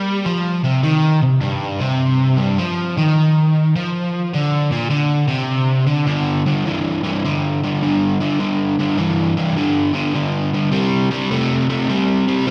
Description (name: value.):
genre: rock.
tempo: 103 BPM.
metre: 4/4.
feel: swing 67% on 8ths.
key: unclear.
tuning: A4 = 440 Hz.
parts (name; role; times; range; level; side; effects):
overdriven semi-hollow guitar; solo; 0.0-12.5 s; G2 to A3; -18 LUFS; equal; slapback echo, analog delay.
room: light reverb.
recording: live gig heard through the venue's PA, recital hall reverb.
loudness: -18 LUFS.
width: mono.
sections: 0.0-6.1 A section; 6.1-12.5 B section.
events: none.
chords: 0.0 C5; 1.4 Gsus4; 2.6 Ebsus2; 3.7 Bb; 4.9 Csus2; 6.1 G5; 10.7 C5.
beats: 0.27 0.85 | 1.43 2.01 2.59 3.17 | 3.75 4.33 4.91 5.49 | 6.07 6.65 7.23 7.82 | 8.40 8.98 9.57 10.15 | 10.73 11.31 11.90 12.48.